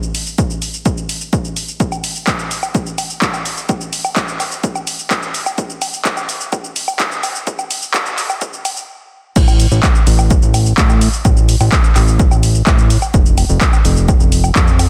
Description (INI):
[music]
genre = melodic techno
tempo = 127 BPM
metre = 4/4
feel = straight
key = unclear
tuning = A4 = 440 Hz
[part]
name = punchy analog drum machine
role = drums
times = 0.0-14.9 s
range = crash cymbal, handclaps, hi-hat, shaker, woodblock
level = -21 LUFS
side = equal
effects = none
[part]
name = electronic kick drum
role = drums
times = 0.4-14.7 s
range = none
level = -17 LUFS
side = equal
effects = none
[part]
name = fat analog bass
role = bass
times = 9.4-14.9 s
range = F1 to A2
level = -16 LUFS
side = equal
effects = sidechain pumping
[sound]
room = light reverb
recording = dense, heavily limited modern master, high-pass filter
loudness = -15 LUFS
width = mono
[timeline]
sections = 0.0-9.4 A section; 9.4-14.9 B section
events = build-up 0.0-9.4; stop 8.9-9.4; drop 9.4-14.9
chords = none